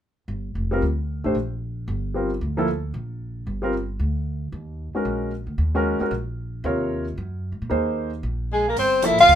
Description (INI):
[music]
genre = modal jazz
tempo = 227 BPM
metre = 4/4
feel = swing 60% on 8ths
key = unclear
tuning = A4 = 440 Hz
[part]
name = upright bass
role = bass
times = 0.3-9.4 s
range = F1 to Bb2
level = -27 LUFS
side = equal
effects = none
[part]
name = clear grand piano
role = accompaniment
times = 0.7-9.2 s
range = C3 to Db5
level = -24 LUFS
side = equal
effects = none
[part]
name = breathy soprano saxophone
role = melody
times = 8.5-9.4 s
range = Ab4 to F5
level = -14 LUFS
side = equal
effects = none
[part]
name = breathy tenor saxophone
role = second line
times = 8.5-9.4 s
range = Ab3 to F4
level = -24 LUFS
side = left 4 dB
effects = none
[part]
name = hi-hat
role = drums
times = 8.8-9.4 s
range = none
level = -34 LUFS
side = right 4 dB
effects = none
[sound]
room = light reverb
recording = minimal, uncompressed stereo recording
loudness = -22 LUFS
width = side -10 dB against mid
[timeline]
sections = 0.3-8.8 A section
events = none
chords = 0.3 Gm7; 4.5 Ebm11; 8.8 Gm11